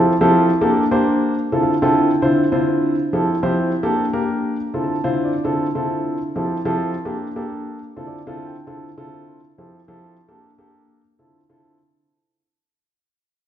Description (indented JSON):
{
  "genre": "jazz",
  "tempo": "149 BPM",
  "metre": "4/4",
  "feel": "straight",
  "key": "D minor",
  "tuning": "A4 = 440 Hz",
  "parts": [
    { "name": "dark grand piano", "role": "solo", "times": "0.0-11.8 s", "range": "D3 to A5", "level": "-17 LUFS", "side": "equal", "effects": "none" }
  ],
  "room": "wet recital hall reverb, RT60 1.5 s",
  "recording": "recorded in a church or concert hall, nothing above 7.5 kHz",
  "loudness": "-17 LUFS",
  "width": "side -10 dB against mid",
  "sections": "0.0-11.9 A section",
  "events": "fade-out 0.0-11.9; grand piano fill 1.4-2.2, 4.6-5.4, 7.9-8.7",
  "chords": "0.0 Fmaj7; 0.6 Gmadd9; 1.4 Dm7; 3.0 Fmaj7; 3.8 Gmadd9; 4.6 Dm7; 6.3 Fmaj7; 7.1 Gmadd9; 7.9 Dm7; 9.5 Fmaj7; 10.3 Gmadd9; 11.1 Dm7"
}